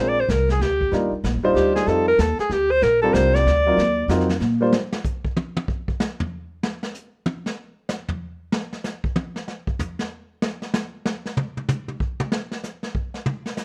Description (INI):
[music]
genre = jazz, small-group swing and bop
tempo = 190 BPM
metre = 3/4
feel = swing 63% on 8ths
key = unclear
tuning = A4 = 440 Hz
[part]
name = clear alto saxophone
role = melody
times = 0.0-4.1 s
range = G4 to D5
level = -21 LUFS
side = equal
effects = none
[part]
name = warm baby grand piano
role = accompaniment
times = 0.0-4.7 s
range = F#3 to C5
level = -24 LUFS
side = equal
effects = none
[part]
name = upright bass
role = bass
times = 0.0-4.7 s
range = Eb1 to Bb2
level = -25 LUFS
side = equal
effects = none
[part]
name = vintage brush drum kit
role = drums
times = 0.3-13.6 s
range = brushed snare drum, hi-hat, kick drum, snare drum, toms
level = -28 LUFS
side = equal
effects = none
[sound]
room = light reverb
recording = none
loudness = -23 LUFS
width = mono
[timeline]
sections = 0.0-4.7 A section; 4.7-12.3 A section; 12.3-13.6 A section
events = alto saxophone solo 0.0-4.7; drum solo 4.7-13.6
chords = 0.0 Bb7; 0.9 Ebmaj7; 1.9 F7; 2.8 Bb6; 3.8 Ebmaj7sus2; 4.7 N.C.